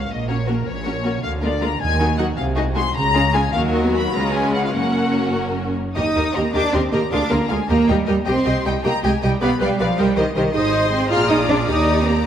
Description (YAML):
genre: quick classical-period movement for string orchestra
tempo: 104 BPM (dotted quarters)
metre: 6/8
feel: rubato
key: F# major, Eb major from 6.0 s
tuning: A4 = 440 Hz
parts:
  - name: warm symphonic violin section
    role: melody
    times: 0.0-12.2 s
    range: A#4 to F6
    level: -24 LUFS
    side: left 4 dB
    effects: none
  - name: clear symphonic double bass section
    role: bass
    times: 0.1-12.2 s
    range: F#1 to D#2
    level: -24 LUFS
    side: right 2 dB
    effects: none
  - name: rich symphonic cello section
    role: bass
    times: 0.1-12.3 s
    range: F#2 to F4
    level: -22 LUFS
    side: right 2 dB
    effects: none
  - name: clear symphonic violin section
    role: second line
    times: 0.3-12.3 s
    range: E#4 to C6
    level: -26 LUFS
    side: left 2 dB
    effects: none
  - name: rich symphonic viola section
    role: accompaniment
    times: 0.3-12.3 s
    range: F#3 to C5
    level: -23 LUFS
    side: left 1 dB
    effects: none
room: moderate concert hall reverb, RT60 2.3 s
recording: none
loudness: -17 LUFS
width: side -9 dB against mid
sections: 0.0-6.0 A section; 6.0-12.3 B section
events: none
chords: 0.1 F#/A#; 1.2 A#7/D; 1.8 D#m; 2.4 G#7/B#; 3.0 C#; 3.5 D#m; 4.1 C#7; 4.7 F#; 6.0 Eb; 7.1 Bb7/D; 7.7 Eb; 8.3 Cm; 9.4 G7; 10.0 Cm7; 10.5 Ab; 11.1 Bb7; 11.7 Eb